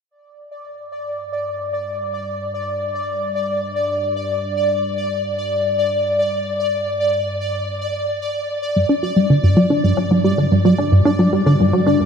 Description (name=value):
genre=ambient, sequencer-driven space music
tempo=111 BPM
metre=4/4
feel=straight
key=unclear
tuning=A4 = 440 Hz
part: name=analog drone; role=bass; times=1.3-12.1 s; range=G2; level=-28 LUFS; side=equal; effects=chorus, phaser
part: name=pulsing gated texture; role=texture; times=0.5-12.1 s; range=D5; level=-21 LUFS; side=equal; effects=chorus, built-in reverb
part: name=plucky analog bass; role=riff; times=8.8-12.1 s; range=G2 to D4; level=-13 LUFS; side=equal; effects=wide subtle chorus, cassette tape, ping-pong delay
room=wet huge ambient reverb, RT60 8.6 s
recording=none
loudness=-16 LUFS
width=side -7 dB against mid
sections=0.1-12.1 A section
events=fade-in on synth drone 0.1-12.1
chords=0.1 G5